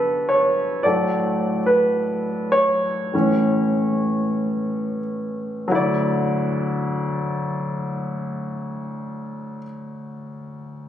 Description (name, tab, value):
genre	pop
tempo	44-57 BPM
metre	4/4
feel	straight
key	D major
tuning	A4 = 435 Hz
part	clear baby grand piano	accompaniment	0.0-10.9 s	D2 to D5	-20 LUFS	equal	none
room	light reverb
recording	recorded on a phone in the room, club reverb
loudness	-19 LUFS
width	side -10 dB against mid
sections	0.0-5.7 A section; 5.7-10.9 B section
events	slowing down 0.0-5.7; grand piano solo 0.0-5.7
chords	0.0 G; 0.8 A69; 3.1 A; 5.7 Dadd9